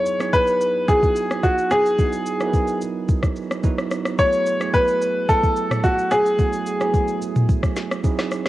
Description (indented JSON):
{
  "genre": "amapiano",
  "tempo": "109 BPM",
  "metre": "4/4",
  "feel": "straight",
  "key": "unclear",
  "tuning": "A4 = 439 Hz",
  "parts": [
    { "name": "clear baby grand piano", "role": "melody", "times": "0.0-7.2 s", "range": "F#4 to C#5", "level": "-19 LUFS", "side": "left 1 dB", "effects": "cassette tape, tape echo" },
    { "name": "bell-like tine electric piano", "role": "accompaniment", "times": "0.0-8.5 s", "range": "F#3 to B4", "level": "-26 LUFS", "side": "right 6 dB", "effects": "cassette tape" },
    { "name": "smooth R&B drum kit", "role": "drums", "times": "0.1-8.5 s", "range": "kick drum, rim click, shaker, snare drum, toms", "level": "-21 LUFS", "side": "equal", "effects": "overdrive" }
  ],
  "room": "moderate spring reverb, RT60 1.9 s",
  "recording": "home recording on cassette",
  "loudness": "-18 LUFS",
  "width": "side -16 dB against mid",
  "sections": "0.0-8.5 A section",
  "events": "none",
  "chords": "0.0 Emaj9; 4.2 F#m11",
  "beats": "0.34 0.89 1.44 | 1.99 2.54 3.09 3.64 | 4.19 4.74 5.29 5.84 | 6.39 6.94 7.49 8.04"
}